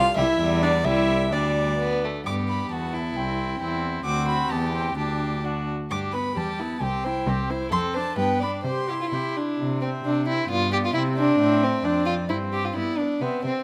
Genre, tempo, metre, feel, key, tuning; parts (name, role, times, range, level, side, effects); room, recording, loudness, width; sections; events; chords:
quick classical-period movement for string quartet; 132 BPM; 2/4; rubato; C major from 7.7 s; A4 = 440 Hz
warm violin; melody; 0.0-13.6 s; C5 to D6; -31 LUFS; equal
rich viola; accompaniment; 0.0-13.6 s; G3 to G4; -32 LUFS; equal
rich cello; bass; 0.0-13.5 s; C2 to C3; -30 LUFS; equal
rich violin; second line; 0.2-13.6 s; G3 to D5; -29 LUFS; equal
moderate scoring stage reverb, RT60 1.5 s; close, detailed microphones; -25 LUFS; mono
0.0-2.3 A section; 2.3-9.6 B section; 9.6-13.6 A section
0.4 Em; 0.9 C; 1.3 G5/D; 2.3 G; 2.7 E5; 3.2 C; 4.1 D7; 4.5 Em; 5.0 Dsus4; 5.9 G; 6.4 Em; 6.8 C; 7.7 Dm7/F; 8.2 G; 8.6 C; 10.5 G7; 10.9 C; 11.4 Am; 11.8 Dm7/F; 12.3 C5/G; 12.7 G